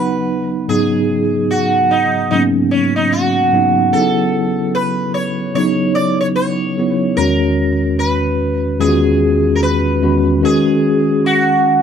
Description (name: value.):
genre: R&B.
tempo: 74 BPM.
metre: 4/4.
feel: swing 61% on 16ths.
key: unclear.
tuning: A4 = 440 Hz.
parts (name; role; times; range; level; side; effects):
sitar; melody; 0.0-11.8 s; C#4 to D5; -17 LUFS; right 1 dB; none.
bell-like tine electric piano; accompaniment; 0.0-11.8 s; E2 to F#4; -15 LUFS; equal; medium stereo tremolo.
room: wet small room ambience, RT60 0.5 s.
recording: dark, warm production.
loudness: -13 LUFS.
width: side -8 dB against mid.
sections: 0.7-11.8 A section.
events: none.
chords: 0.0 Badd9; 0.7 G#m11; 3.9 F#m7; 7.2 Emaj9; 10.4 D#m7.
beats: | 0.68 1.50 2.31 3.12 | 3.93 4.74 5.55 6.36 | 7.17 7.98 8.79 9.60 | 10.41 11.22.